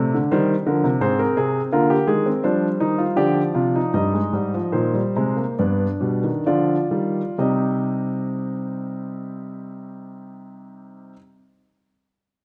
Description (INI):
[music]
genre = classical, baroque-style 4-part fugue for grand piano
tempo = 62-88 BPM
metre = 4/4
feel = straight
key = C minor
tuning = A4 = 439 Hz
[part]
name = warm grand piano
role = solo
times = 0.0-11.2 s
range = G2 to Eb5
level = -22 LUFS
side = equal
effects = none
[sound]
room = moderate recital hall reverb, RT60 1.6 s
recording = dark, warm production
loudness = -21 LUFS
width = mono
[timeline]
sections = 0.0-7.4 A section; 7.4-11.2 B section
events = slowing down 0.0-7.4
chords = 0.0 Bb; 1.0 Fm/Ab; 2.5 F5; 4.0 Cm/G; 5.6 G7; 7.4 Cm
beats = 0.34 | 1.03 1.74 2.45 3.19 | 3.96 4.75 5.59 6.46 | 7.39 8.35 9.30 10.26